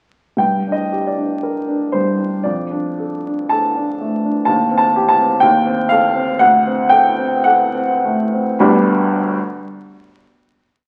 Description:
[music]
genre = classical, romantic character piece for solo piano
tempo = 48-64 BPM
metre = 2/4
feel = rubato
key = unclear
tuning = A4 = 439 Hz
[part]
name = warm baby grand piano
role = solo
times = 0.4-9.4 s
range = G1 to B5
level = -16 LUFS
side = equal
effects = none
[sound]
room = wet recital hall reverb, RT60 1.4 s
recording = very old 78 rpm record, vinyl crackle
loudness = -16 LUFS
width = mono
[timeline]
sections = 0.4-8.6 A section; 8.6-10.7 final chord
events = slowing down 3.5-8.6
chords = 0.4 Gm; 2.4 Dm/F; 4.5 Cm/Eb; 5.4 Am7b5/Eb; 6.4 D7; 8.6 G

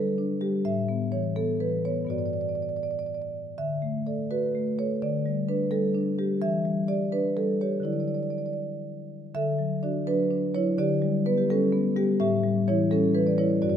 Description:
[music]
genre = classical, contemporary piece for solo marimba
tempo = 84 BPM (dotted quarters)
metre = 6/8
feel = rubato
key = D major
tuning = A4 = 440 Hz
[part]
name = marimba with medium mallets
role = solo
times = 0.0-13.8 s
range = G2 to E5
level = -24 LUFS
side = equal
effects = none
[sound]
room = moderate recital hall reverb, RT60 1.5 s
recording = none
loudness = -24 LUFS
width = side -8 dB against mid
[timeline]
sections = 0.0-9.3 A section; 9.3-13.8 A section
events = none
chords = 0.0 Dsus4; 0.6 Asus2; 2.1 Gmaj7; 3.6 D6; 5.0 Dsus4; 6.4 Em7; 7.9 Dadd9; 9.3 D6; 10.8 Gadd9/D; 12.2 A7

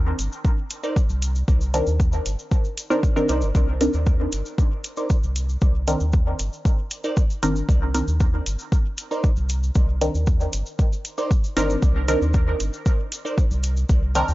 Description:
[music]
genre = dub techno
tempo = 116 BPM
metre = 4/4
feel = straight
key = C minor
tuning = A4 = 440 Hz
[part]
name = round analog bass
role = bass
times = 0.0-14.3 s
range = G1 to Eb2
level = -23 LUFS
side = equal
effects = tube saturation, sidechain pumping
[part]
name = electronic hi-hat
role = drums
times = 0.2-14.3 s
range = none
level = -30 LUFS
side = right 1 dB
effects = none
[part]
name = tube shaker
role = percussion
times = 0.2-14.3 s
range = none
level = -36 LUFS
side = left 2 dB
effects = none
[part]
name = electronic kick drum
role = drums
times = 0.4-14.0 s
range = none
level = -19 LUFS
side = equal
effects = none
[part]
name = wavetable chord stab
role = riff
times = 0.8-13.4 s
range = Eb4 to D5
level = -31 LUFS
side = right 2 dB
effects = sidechain pumping, dub echo
[part]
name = filtered dub chord stab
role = stabs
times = 1.7-14.3 s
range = Eb3 to Bb4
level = -25 LUFS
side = equal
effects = chorus, phaser, sidechain pumping, dub echo
[sound]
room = little or no reverb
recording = dry, gritty hardware recording, nothing above 7.6 kHz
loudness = -19 LUFS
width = side -18 dB against mid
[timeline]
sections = 0.0-14.3 A section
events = none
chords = 0.0 Cm9

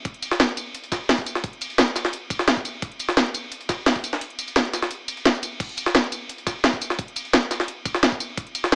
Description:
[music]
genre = drum and bass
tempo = 173 BPM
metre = 4/4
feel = straight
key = none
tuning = none
[part]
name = jungle sampler-style drum kit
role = drums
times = 0.0-8.8 s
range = hi-hat, snare drum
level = -26 LUFS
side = equal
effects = high-pass filter on hats, high-pass filter on snare
[part]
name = drum and bass drum kit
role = drums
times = 0.1-8.8 s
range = crash cymbal, hi-hat, ride cymbal, snare drum, tambourine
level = -26 LUFS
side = equal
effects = none
[part]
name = electronic kick drum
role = drums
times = 0.1-8.4 s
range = none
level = -35 LUFS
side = equal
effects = none
[sound]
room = light reverb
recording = small speaker sound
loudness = -24 LUFS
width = mono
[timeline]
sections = 0.0-8.8 A section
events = kick drops out 4.2-5.6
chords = none

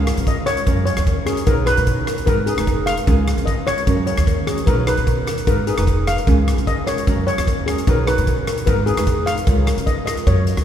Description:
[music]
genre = calypso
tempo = 150 BPM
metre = 4/4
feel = straight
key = F# major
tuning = A4 = 440 Hz
[part]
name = steel pan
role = melody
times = 0.0-10.6 s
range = G#4 to E#5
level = -23 LUFS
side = left 2 dB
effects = none
[part]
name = ukulele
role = accompaniment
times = 0.0-10.6 s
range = C#4 to C#5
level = -26 LUFS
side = right 3 dB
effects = none
[part]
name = upright bass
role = bass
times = 0.0-10.6 s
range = E#1 to C#3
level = -20 LUFS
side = equal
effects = none
[part]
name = natural country drum kit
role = drums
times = 0.1-10.6 s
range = hi-hat, kick drum, rim click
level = -21 LUFS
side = equal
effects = none
[part]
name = cowbell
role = percussion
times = 0.1-10.4 s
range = none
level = -28 LUFS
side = left 3 dB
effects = none
[sound]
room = wet cathedral reverb, RT60 5.6 s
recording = recorded in a church or concert hall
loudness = -16 LUFS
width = side -10 dB against mid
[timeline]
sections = 0.0-10.6 A section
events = none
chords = 0.0 C#; 0.7 F#; 1.5 B; 2.3 G#m; 3.1 C#; 3.9 F#; 4.7 B; 5.5 G#m; 6.3 C#; 7.1 F#; 7.9 B; 8.7 G#m; 9.5 C#

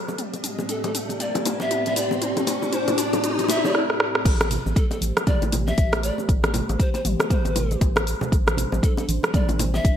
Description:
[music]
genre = afro house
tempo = 118 BPM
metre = 4/4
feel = swing 59% on 16ths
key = A minor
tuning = A4 = 437 Hz
[part]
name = dark analog pad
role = sustained chords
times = 0.0-10.0 s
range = A2 to D5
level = -30 LUFS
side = right 1 dB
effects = chorus, sidechain pumping
[part]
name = riser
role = sound effects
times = 0.0-3.7 s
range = none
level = -28 LUFS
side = left 1 dB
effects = none
[part]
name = deep house drum kit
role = drums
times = 0.1-10.0 s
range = crash cymbal, hi-hat, rim click, shaker, toms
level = -25 LUFS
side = equal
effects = high-pass filter on perc, high-pass filter on hats, high-pass filter on toms, high-pass filter on snare, high-pass filter on cymbals, gated reverb
[part]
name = bongos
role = percussion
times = 0.1-9.8 s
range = none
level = -31 LUFS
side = left 3 dB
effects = none
[part]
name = breathy reedy pan flute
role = melody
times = 0.7-10.0 s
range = A4 to E5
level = -29 LUFS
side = left 2 dB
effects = low-pass filter, digital delay
[part]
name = round analog bass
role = bass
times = 4.3-10.0 s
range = A1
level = -26 LUFS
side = equal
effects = sidechain pumping
[part]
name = electronic kick drum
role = drums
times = 4.3-10.0 s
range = none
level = -20 LUFS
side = equal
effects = none
[part]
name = congas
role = percussion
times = 4.4-9.8 s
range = none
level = -32 LUFS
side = right 4 dB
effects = none
[sound]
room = moderate plate reverb, RT60 1.1 s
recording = bright 1980s-style digital production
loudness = -20 LUFS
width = side -9 dB against mid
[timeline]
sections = 0.0-4.3 A section; 4.3-10.0 B section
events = build-up 0.0-4.3; drum fill 0.0-3.7, 3.7-4.3; riser 0.0-3.7; filter sweep on pan flute 0.0-4.3; drop 4.3-10.0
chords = 0.2 Gsus4/A; 4.3 Am7; 8.3 Gsus4/A

